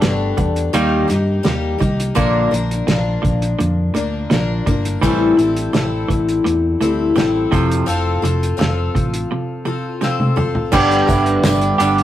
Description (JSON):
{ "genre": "folk rock and heartland rock", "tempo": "84 BPM", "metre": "4/4", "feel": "straight", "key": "unclear", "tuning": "A4 = 439 Hz", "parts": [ { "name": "picked twelve-string acoustic guitar", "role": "accompaniment", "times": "0.0-12.0 s", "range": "G2 to B4", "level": "-19 LUFS", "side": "left 4 dB", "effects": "none" }, { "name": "clean electric guitar", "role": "riff", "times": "0.0-12.0 s", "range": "F2 to G4", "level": "-20 LUFS", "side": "right 3 dB", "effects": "none" }, { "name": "fingered electric bass", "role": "bass", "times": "0.0-12.0 s", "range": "F1 to G2", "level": "-21 LUFS", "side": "equal", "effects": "none" }, { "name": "cloth-damped thuddy drum kit", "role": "drums", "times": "0.0-12.0 s", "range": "crash cymbal, hi-hat, kick drum, snare drum, toms", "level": "-20 LUFS", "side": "equal", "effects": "none" }, { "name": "reed electric piano", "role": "accompaniment", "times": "10.7-12.0 s", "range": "G4 to E5", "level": "-27 LUFS", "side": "right 3 dB", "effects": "fast tremolo" }, { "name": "tambourine", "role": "percussion", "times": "11.1-12.0 s", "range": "none", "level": "-34 LUFS", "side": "left 5 dB", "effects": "none" } ], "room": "moderate studio ambience, RT60 0.5 s", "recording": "rough rehearsal-room recording", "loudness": "-15 LUFS", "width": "side -12 dB against mid", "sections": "0.0-10.7 A section; 10.7-12.0 B section", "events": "drum fill 10.0-10.7", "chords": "0.0 Gadd9; 0.7 Eb; 2.2 Bb; 5.0 Am7; 7.5 F; 10.7 G", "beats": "0.02 0.74 1.45 | 2.17 2.88 3.60 4.31 | 5.03 5.74 6.45 7.17 | 7.88 8.59 9.30 10.02 | 10.72 11.43" }